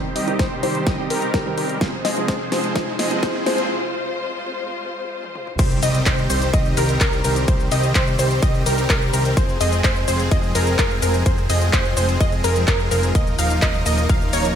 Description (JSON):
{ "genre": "EDM, festival progressive house", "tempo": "127 BPM", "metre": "4/4", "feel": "straight", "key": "F minor", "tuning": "A4 = 440 Hz", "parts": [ { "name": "dark studio string section", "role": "sustained chords", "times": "0.0-14.6 s", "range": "C2 to C5", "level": "-30 LUFS", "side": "left 3 dB", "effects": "sidechain pumping, low-pass filter" }, { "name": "wide unison pluck", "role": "arpeggios", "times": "0.0-14.5 s", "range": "Bb4 to F5", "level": "-25 LUFS", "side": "left 1 dB", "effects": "auto-pan, sidechain pumping, dub echo" }, { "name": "supersaw chords", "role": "riff", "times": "0.0-14.5 s", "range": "Eb3 to F5", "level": "-24 LUFS", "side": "equal", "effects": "sidechain pumping, low-pass filter, dub echo" }, { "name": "riser and impact", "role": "sound effects", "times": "0.1-7.5 s", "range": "none", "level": "-32 LUFS", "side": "right 1 dB", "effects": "none" }, { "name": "big-room dance drum kit", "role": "drums", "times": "0.2-14.5 s", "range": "crash cymbal, handclaps, hi-hat, shaker, snare drum, toms", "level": "-25 LUFS", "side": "left 1 dB", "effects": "studio reverb" }, { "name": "warm grand piano", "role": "accompaniment", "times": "0.3-3.7 s", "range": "Eb3 to Bb4", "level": "-28 LUFS", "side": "right 4 dB", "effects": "sidechain pumping, dub echo" }, { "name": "electronic kick drum", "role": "drums", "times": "0.4-14.2 s", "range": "none", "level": "-20 LUFS", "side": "equal", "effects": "overdrive, studio reverb" }, { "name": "fat analog bass", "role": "bass", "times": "5.6-14.5 s", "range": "Eb1 to C2", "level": "-22 LUFS", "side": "equal", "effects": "sidechain pumping" } ], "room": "light reverb, digital ambience", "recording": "high-pass filter", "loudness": "-17 LUFS", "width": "side -8 dB against mid", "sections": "0.0-5.6 A section; 5.6-14.6 B section", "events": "build-up 0.0-5.6; drum fill 0.0-3.7, 5.2-5.6; filter sweep on supersaw synth 0.0-5.6; filter sweep on synth pluck 0.0-5.6; filter sweep on string section 0.0-5.6; filter sweep 0.0-5.6; break 3.7-5.6; drop 5.6-14.6; impact 5.6-7.5", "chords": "0.0 Cm; 1.8 Fm; 5.6 Cm; 9.4 Fm; 13.2 Ebsus2" }